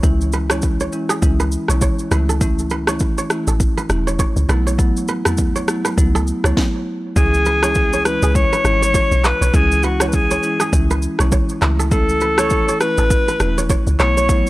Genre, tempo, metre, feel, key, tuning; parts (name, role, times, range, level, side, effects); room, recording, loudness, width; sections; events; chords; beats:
afrobeats; 101 BPM; 4/4; swing 58% on 16ths; C# minor; A4 = 437 Hz
marimba with medium mallets; accompaniment; 0.0-14.5 s; E3 to E4; -22 LUFS; equal
deep log drum bass; bass; 0.0-14.4 s; E1 to C#2; -18 LUFS; equal
afro-pop drum kit; drums; 0.0-14.5 s; handclaps, kick drum, rim click, shaker, snare drum, toms; -19 LUFS; equal
kora; riff; 0.3-14.5 s; G#4 to C#5; -25 LUFS; right 4 dB; analog delay
breathy alto saxophone; melody; 7.2-14.5 s; F#4 to C#5; -18 LUFS; left 1 dB
small room ambience; dry, gritty hardware recording, transformer saturation; -14 LUFS; side -18 dB against mid
0.0-7.2 A section; 7.2-14.5 B section
stop 6.6-7.2
0.0 C#m; 2.1 A/C#; 4.5 B7sus4; 7.2 C#m; 11.6 A/C#; 14.0 B7sus4
| 0.03 0.63 1.22 1.82 | 2.41 3.00 3.60 4.19 | 4.79 5.38 5.97 6.57 | 7.16 7.76 8.35 8.95 | 9.54 10.13 10.73 11.32 | 11.91 12.51 13.10 13.70 | 14.29